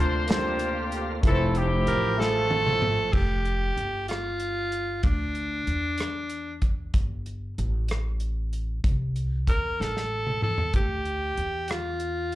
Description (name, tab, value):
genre	slow gospel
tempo	63 BPM (dotted quarters)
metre	6/8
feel	straight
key	F major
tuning	A4 = 440 Hz
part	warm horn section	melody	0.0-3.1 s	A3 to C5	-28 LUFS	left 1 dB	plate reverb, slapback echo
part	warm grand piano	accompaniment	0.0-3.2 s	C3 to E5	-32 LUFS	left 3 dB	plate reverb, slapback echo
part	bright tonewheel organ	sustained chords	0.0-3.1 s	D3 to F4	-35 LUFS	right 5 dB	slow rotary speaker, overdrive, chorus vibrato, plate reverb
part	upright bass	bass	0.0-12.4 s	F1 to E2	-29 LUFS	equal	none
part	warm soul drum kit	drums	0.3-12.4 s	crash cymbal, hi-hat, kick drum, rim click, snare drum, toms	-26 LUFS	equal	none
part	edgy alto saxophone	melody	1.9-6.6, 9.5-12.4 s	D4 to Bb4	-27 LUFS	right 1 dB	plate reverb, slapback echo
room	light reverb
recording	live gig heard through the venue's PA, club reverb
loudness	-24 LUFS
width	side -15 dB against mid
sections	0.0-3.1 A section; 3.1-12.4 B section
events	drum fill 2.2-3.1, 9.8-10.7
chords	0.0 C9sus4; 1.2 Fmaj7; 3.1 Fsus2; 5.0 Dsus2; 6.9 Gsus2; 8.8 C; 9.8 N.C.; 10.7 Dmadd9